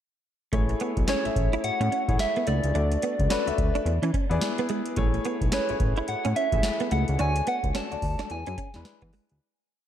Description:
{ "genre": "R&B, new jack swing", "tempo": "108 BPM", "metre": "4/4", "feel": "swing 61% on 16ths", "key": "A major", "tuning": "A4 = 439 Hz", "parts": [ { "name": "warm grand piano", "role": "accompaniment", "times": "0.5-9.4 s", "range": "G#3 to E5", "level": "-31 LUFS", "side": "left 4 dB", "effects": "none" }, { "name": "direct-recorded clean electric guitar", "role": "riff", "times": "0.5-9.2 s", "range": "G#3 to E4", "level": "-32 LUFS", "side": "right 5 dB", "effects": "ensemble chorus" }, { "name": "fat analog bass", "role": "bass", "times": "0.5-9.4 s", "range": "A1 to E3", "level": "-27 LUFS", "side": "equal", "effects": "none" }, { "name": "booming analog drum machine", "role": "drums", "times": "0.5-9.4 s", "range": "hi-hat, kick drum, snare drum", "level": "-29 LUFS", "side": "equal", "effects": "none" }, { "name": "soft struck synth lead", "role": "melody", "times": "1.1-9.1 s", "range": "C#5 to A5", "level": "-29 LUFS", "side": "right 1 dB", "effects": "chorus" } ], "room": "light reverb, digital ambience", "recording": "dark, warm production", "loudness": "-23 LUFS", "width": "side -10 dB against mid", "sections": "0.5-9.4 verse", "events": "fade-out 7.2-9.4", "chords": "0.5 Amaj7; 2.7 Dmaj7; 3.9 E7; 5.0 Amaj7; 7.2 Dmaj7; 8.3 E7", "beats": "| 0.53 1.08 1.64 2.19 | 2.75 3.30 3.86 4.42 | 4.97 5.53 6.08 6.64 | 7.19 7.75 8.30 8.86" }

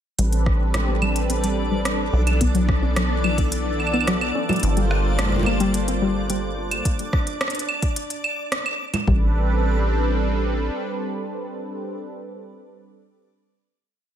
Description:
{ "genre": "IDM", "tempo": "108 BPM", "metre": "4/4", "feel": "straight", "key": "A minor", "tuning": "A4 = 441 Hz", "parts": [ { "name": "warm analog pad", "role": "sustained chords", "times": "0.2-12.1 s", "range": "E3 to D5", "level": "-26 LUFS", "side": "right 1 dB", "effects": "chorus, vintage 12-bit sampler grit, sidechain pumping" }, { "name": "warbly dusty pluck", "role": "arpeggios", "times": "0.2-9.3 s", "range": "F#3 to C#4", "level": "-26 LUFS", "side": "left 2 dB", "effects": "chorus, ping-pong delay" }, { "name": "deep acid bass", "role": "bass", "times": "0.2-10.7 s", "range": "G1 to B1", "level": "-22 LUFS", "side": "equal", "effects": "none" }, { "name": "organic electronic drum kit", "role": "drums", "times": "0.2-9.0 s", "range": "claves, congas, hi-hat, rim click", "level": "-26 LUFS", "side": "right 2 dB", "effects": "overdrive, digital delay" }, { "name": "backwards swelling texture", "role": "texture", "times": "1.0-9.1 s", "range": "D4 to D5", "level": "-33 LUFS", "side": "left 1 dB", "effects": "built-in reverb" }, { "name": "electronic kick drum", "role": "drums", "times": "0.5-3.5, 6.9-9.2 s", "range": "none", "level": "-22 LUFS", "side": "equal", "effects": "overdrive" } ], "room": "light reverb", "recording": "none", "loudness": "-19 LUFS", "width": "side -10 dB against mid", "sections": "0.2-9.1 groove; 9.1-11.3 final chord", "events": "filter sweep on synth arpeggio sound 0.2-6.9", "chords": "0.2 Am11; 2.1 Bm11; 4.6 Gm11; 6.9 N.C.; 9.1 Am11", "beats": "| 0.19 0.74 1.30 1.85 | 2.41 2.96 3.52 4.08 | 4.63 5.19 5.74 6.30 | 6.85 7.41 7.96 8.52 | 9.07 9.63 10.19 10.74" }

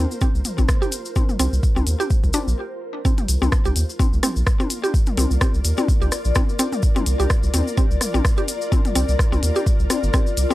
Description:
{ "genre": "minimal techno", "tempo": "127 BPM", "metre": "4/4", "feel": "swing 56% on 16ths", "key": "unclear", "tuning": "A4 = 440 Hz", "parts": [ { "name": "mallet-like synth pluck", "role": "riff", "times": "0.0-10.5 s", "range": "C4 to G4", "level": "-25 LUFS", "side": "equal", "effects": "chorus, cassette tape, sidechain pumping, tape echo" }, { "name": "saturated sub bass", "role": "bass", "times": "0.0-10.5 s", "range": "G1 to Eb2", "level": "-20 LUFS", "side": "equal", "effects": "sidechain pumping" }, { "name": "ethereal airy pad", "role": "texture", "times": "0.0-10.5 s", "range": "F4 to D5", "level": "-30 LUFS", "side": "left 2 dB", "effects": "ensemble chorus, built-in reverb, sidechain pumping" }, { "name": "cabasa", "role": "percussion", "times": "0.1-10.5 s", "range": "none", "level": "-30 LUFS", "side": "left 2 dB", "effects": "none" }, { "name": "electronic kick drum", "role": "drums", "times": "0.2-10.2 s", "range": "none", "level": "-19 LUFS", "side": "equal", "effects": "none" }, { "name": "electronic toms", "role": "percussion", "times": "0.2-10.5 s", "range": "none", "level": "-30 LUFS", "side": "left 3 dB", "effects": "overdrive, tape echo" }, { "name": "minimal click drum kit", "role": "drums", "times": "0.5-10.5 s", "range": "hi-hat, rim click", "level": "-25 LUFS", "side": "equal", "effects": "none" } ], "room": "little or no reverb", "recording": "dry, gritty hardware recording, transformer saturation", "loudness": "-17 LUFS", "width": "side -16 dB against mid", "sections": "0.0-3.1 A section; 3.1-10.5 B section", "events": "stop 2.6-3.1; drop 3.1-10.5", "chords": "0.0 C7(no3)", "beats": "0.22 0.69 | 1.16 1.63 2.11 2.58 | 3.05 3.52 4.00 4.47 | 4.94 5.41 5.88 6.36 | 6.83 7.30 7.78 8.25 | 8.72 9.19 9.66 10.14" }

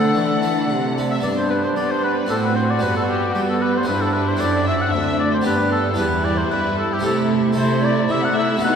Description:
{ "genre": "classical, baroque-style concerto movement with solo episodes", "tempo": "114 BPM", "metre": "3/4", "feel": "straight", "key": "G major", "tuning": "A4 = 440 Hz", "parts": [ { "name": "rich chamber violin section", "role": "melody", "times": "0.0-8.8 s", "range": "G4 to F#5", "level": "-28 LUFS", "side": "left 3 dB", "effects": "none" }, { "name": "warm oboe", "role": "melody", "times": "0.0-8.8 s", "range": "G4 to F#5", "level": "-22 LUFS", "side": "left 2 dB", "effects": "none" }, { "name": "warm symphonic violin section", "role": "second line", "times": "0.0-8.8 s", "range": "B3 to F#4", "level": "-25 LUFS", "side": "left 2 dB", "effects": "none" }, { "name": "harpsichord", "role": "accompaniment", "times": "0.0-8.8 s", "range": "D2 to A4", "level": "-25 LUFS", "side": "right 1 dB", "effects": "none" }, { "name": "warm symphonic viola section", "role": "accompaniment", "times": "0.0-8.8 s", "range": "G3 to D4", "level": "-24 LUFS", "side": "right 2 dB", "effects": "none" }, { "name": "warm chamber cello section", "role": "bass", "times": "0.0-8.8 s", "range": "D2 to G3", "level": "-24 LUFS", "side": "right 2 dB", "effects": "none" } ], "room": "wet church reverb, RT60 2.9 s", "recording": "none", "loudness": "-17 LUFS", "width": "side -7 dB against mid", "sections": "0.0-1.2 A section; 1.2-8.8 A section", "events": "none", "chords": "0.0 D; 1.2 G; 2.3 D7/A; 2.8 G; 3.9 Am11/G; 4.4 D7/F#; 5.5 G; 6.0 Em; 7.0 Am7/C; 7.6 Am/C", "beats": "0.15 0.69 | 1.24 1.77 2.30 | 2.83 3.36 3.89 | 4.41 4.94 5.46 | 5.99 6.52 7.04 | 7.57 8.09 8.62" }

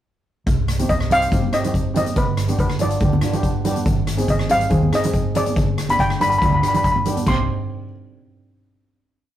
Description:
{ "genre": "calypso", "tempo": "141 BPM", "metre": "4/4", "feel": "straight", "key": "C harmonic minor", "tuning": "A4 = 440 Hz", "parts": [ { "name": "hollow-body short-scale fingered electric bass", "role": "bass", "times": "0.5-7.5 s", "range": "G1 to G2", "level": "-22 LUFS", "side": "equal", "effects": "none" }, { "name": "street-band drum kit", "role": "drums", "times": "0.5-7.4 s", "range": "crash cymbal, hi-hat, kick drum, rim click", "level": "-21 LUFS", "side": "equal", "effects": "none" }, { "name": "steel pan", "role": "accompaniment", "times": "0.8-7.5 s", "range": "B3 to Ab4", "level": "-26 LUFS", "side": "equal", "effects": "none" }, { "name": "congas", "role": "percussion", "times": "0.8-7.5 s", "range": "none", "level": "-27 LUFS", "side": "right 3 dB", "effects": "none" }, { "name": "steel pan", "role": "melody", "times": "0.9-7.5 s", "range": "B4 to C6", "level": "-20 LUFS", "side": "left 1 dB", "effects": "slapback echo" } ], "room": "moderate studio reverb, RT60 0.6 s", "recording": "rough rehearsal-room recording, warm saturation", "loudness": "-17 LUFS", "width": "side -12 dB against mid", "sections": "0.5-7.3 verse; 7.3-9.0 final chord", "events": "none", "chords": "0.5 Cm; 2.2 G; 3.9 Ab; 5.6 G; 7.3 Cm", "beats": "| 0.47 0.90 1.32 1.74 | 2.17 2.59 3.02 3.44 | 3.87 4.29 4.72 5.15 | 5.57 6.00 6.42 6.85 | 7.27" }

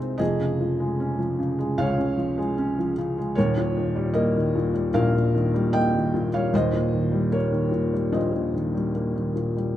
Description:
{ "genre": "classical, lyrical solo piano", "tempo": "76 BPM", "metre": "4/4", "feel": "rubato", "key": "unclear", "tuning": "A4 = 440 Hz", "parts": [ { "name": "felt-muted upright piano", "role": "solo", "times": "0.0-9.8 s", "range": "Eb1 to G5", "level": "-21 LUFS", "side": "equal", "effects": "none" } ], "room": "light reverb", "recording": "close, detailed microphones", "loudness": "-21 LUFS", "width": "side -12 dB against mid", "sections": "0.0-9.8 A section", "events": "none", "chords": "0.2 Db/F; 3.4 Ebadd9; 6.5 Cm7/Eb", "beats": "| 0.20 1.00 1.79 2.58 | 3.36 4.15 4.94 5.73 | 6.53 7.32 8.13 8.95" }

